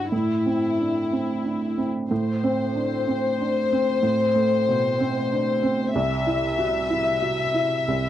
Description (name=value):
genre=neoclassical piano and strings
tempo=93 BPM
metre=3/4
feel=rubato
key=A dorian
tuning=A4 = 441 Hz
part: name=warm chamber violin section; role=melody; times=0.0-8.1 s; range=E4 to E5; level=-24 LUFS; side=left 4 dB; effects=none
part: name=felt-muted upright piano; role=accompaniment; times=0.0-8.1 s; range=C2 to F#4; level=-24 LUFS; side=right 3 dB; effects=none
room=light reverb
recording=dry, close 1970s-style studio recording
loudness=-21 LUFS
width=side -11 dB against mid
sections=0.0-2.1 A section; 2.1-8.1 B section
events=none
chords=0.1 Am; 2.1 Amadd9; 5.9 C